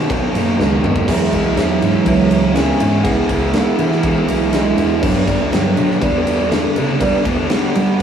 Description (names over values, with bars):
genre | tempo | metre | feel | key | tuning
classic rock | 121 BPM | 4/4 | straight | unclear | A4 = 437 Hz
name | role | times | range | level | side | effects
mellow bass clarinet | melody | 0.0-8.0 s | F#3 to C#4 | -19 LUFS | right 3 dB | slapback echo
crunchy overdriven guitar | riff | 0.0-8.0 s | G2 to E4 | -24 LUFS | right 6 dB | none
raw garage guitar | riff | 0.0-8.0 s | G2 to E4 | -19 LUFS | left 1 dB | overdrive
growling fingered electric bass | bass | 0.0-8.0 s | B1 to G3 | -21 LUFS | equal | overdrive
reed electric piano | accompaniment | 0.1-8.0 s | B3 to G5 | -25 LUFS | right 1 dB | none
huge arena drum kit | drums | 0.1-8.0 s | crash cymbal, kick drum, ride cymbal, snare drum, splash cymbal, toms | -20 LUFS | equal | none
room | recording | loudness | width
light reverb | rough rehearsal-room recording, warm saturation, studio reverb | -13 LUFS | side -8 dB against mid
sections
0.0-8.0 A section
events
drum fill 0.6-1.1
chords
0.0 B; 1.1 Eadd9; 5.0 G